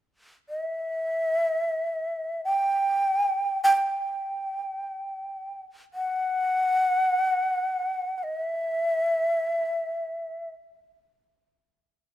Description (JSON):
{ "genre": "japanese traditional, Japanese chamber music", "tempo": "free time", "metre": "none", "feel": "none", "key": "E minor", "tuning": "A4 = 441 Hz", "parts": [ { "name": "breathy shakuhachi", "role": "solo", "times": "0.5-10.5 s", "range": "E5 to G5", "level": "-24 LUFS", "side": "equal", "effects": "none" } ], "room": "light reverb", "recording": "none", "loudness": "-24 LUFS", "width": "side -13 dB against mid", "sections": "0.0-12.1 A section", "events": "none", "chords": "none" }